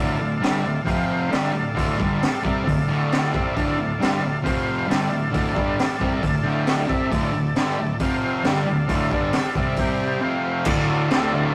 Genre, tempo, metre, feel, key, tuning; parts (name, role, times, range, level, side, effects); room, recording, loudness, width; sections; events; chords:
garage rock duo or trio; 135 BPM; 4/4; straight; D minor; A4 = 441 Hz
overdriven combo organ; sustained chords; 0.0-11.5 s; F4 to Bb5; -30 LUFS; equal
fuzz guitar; riff; 0.0-11.5 s; D2 to C4; -25 LUFS; equal; distortion
raw garage drum kit; drums; 0.4-11.2 s; crash cymbal, hi-hat, kick drum, snare drum; -27 LUFS; equal
wet stone room reverb, RT60 1.4 s; rough rehearsal-room recording, tube saturation; -22 LUFS; mono
0.0-10.7 A section
transistor combo organ fill 5.8-7.1, 9.8-10.7
0.0 Dm; 0.9 F5; 1.3 Dm; 4.4 F5; 4.9 Dm; 8.0 F5; 8.5 Dm; 9.8 C5; 10.2 F5; 10.7 Dm